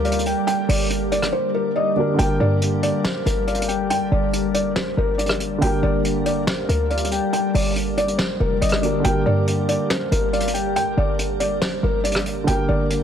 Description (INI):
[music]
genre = hip hop, trap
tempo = 140 BPM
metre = 4/4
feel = half-time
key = G minor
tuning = A4 = 440 Hz
[part]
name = felt-muted upright piano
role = melody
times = 0.0-12.8 s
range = Bb4 to G5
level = -24 LUFS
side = left 1 dB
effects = digital delay
[part]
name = soft octave-layered synth lead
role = second line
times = 0.0-3.9, 6.9-10.7 s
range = D5 to G5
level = -27 LUFS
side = left 6 dB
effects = chorus, digital delay
[part]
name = dark grand piano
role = accompaniment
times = 0.0-13.0 s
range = D3 to Bb4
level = -26 LUFS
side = right 2 dB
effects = none
[part]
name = glassy FM pad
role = sustained chords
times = 0.0-13.0 s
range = G3 to D5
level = -26 LUFS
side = left 1 dB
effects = ensemble chorus, built-in reverb
[part]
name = short 808-style bass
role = bass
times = 0.0-13.0 s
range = F1 to G2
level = -23 LUFS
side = equal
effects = none
[part]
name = soft brush drum kit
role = drums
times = 0.0-13.0 s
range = hi-hat, rim click, snare drum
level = -26 LUFS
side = equal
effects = none
[sound]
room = light reverb, studio reverb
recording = dense, heavily limited modern master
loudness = -18 LUFS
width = side -8 dB against mid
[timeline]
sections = 0.0-2.2 A section; 2.2-13.0 A section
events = drums muted 1.3-2.2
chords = 0.0 Gm